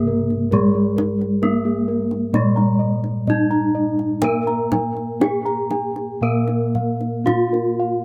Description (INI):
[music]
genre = Javanese gamelan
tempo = 56-68 BPM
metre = 4/4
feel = straight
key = Bb slendro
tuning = A4 = 440 Hz
[part]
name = gamelan-type bronze metallophone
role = melody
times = 0.0-8.0 s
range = Ab3-45c to Bb4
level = -23 LUFS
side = equal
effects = none
[part]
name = gamelan-type bronze metallophone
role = accompaniment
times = 0.0-8.0 s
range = C3+30c to Bb3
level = -28 LUFS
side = equal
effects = none
[part]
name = gamelan-type bossed gongs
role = arpeggios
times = 0.0-8.0 s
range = Ab4-45c to Bb5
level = -28 LUFS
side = equal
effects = slapback echo
[part]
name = gamelan-type bossed gongs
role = bass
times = 0.0-8.0 s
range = Ab2-45c to Bb4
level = -27 LUFS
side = equal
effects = none
[part]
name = kendang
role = percussion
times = 0.3-7.7 s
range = none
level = -27 LUFS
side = equal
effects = none
[sound]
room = little or no reverb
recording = recorded outdoors, with no room sound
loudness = -20 LUFS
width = mono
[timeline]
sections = 0.0-8.0 A section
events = none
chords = none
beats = | 0.53 1.42 2.34 3.27 | 4.23 5.21 6.22 7.25